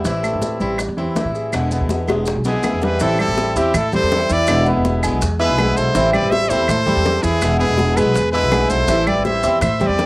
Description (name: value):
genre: latin, Cuban son and guajira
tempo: 163 BPM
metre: 4/4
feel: straight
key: A minor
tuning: A4 = 443 Hz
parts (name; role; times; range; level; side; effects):
- picked swing-style acoustic guitar; accompaniment; 0.0-10.1 s; B2 to E4; -23 LUFS; left 1 dB; cassette tape
- warm concert grand piano; arpeggios; 0.0-10.1 s; E3 to E6; -21 LUFS; right 1 dB; cassette tape
- upright bass; bass; 0.0-10.1 s; E1 to A2; -21 LUFS; equal; none
- maracas; percussion; 0.0-10.1 s; none; -33 LUFS; right 2 dB; none
- bongos; percussion; 0.1-10.1 s; none; -25 LUFS; left 3 dB; none
- congas; percussion; 0.1-10.1 s; none; -27 LUFS; equal; none
- claves; percussion; 0.2-9.8 s; none; -25 LUFS; right 3 dB; none
- brilliant trumpet; melody; 2.5-10.1 s; G4 to E5; -19 LUFS; equal; cassette tape
- bright studio violin section; second line; 2.5-10.1 s; E4 to C5; -29 LUFS; equal; none
room: moderate booth ambience, RT60 0.2 s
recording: home recording on cassette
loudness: -15 LUFS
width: side -21 dB against mid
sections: 0.0-3.0 A section; 3.0-10.1 B section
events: drum fill 1.9-3.0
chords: 0.1 Am7; 1.5 E7; 3.0 Am7; 4.5 E7; 5.9 Am7; 7.4 E7; 8.9 Am7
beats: | 0.06 0.43 0.80 1.17 | 1.53 1.90 2.27 2.64 | 3.01 3.38 3.74 4.11 | 4.48 4.85 5.21 5.58 | 5.95 6.32 6.68 7.05 | 7.42 7.79 8.15 8.52 | 8.89 9.25 9.62 9.99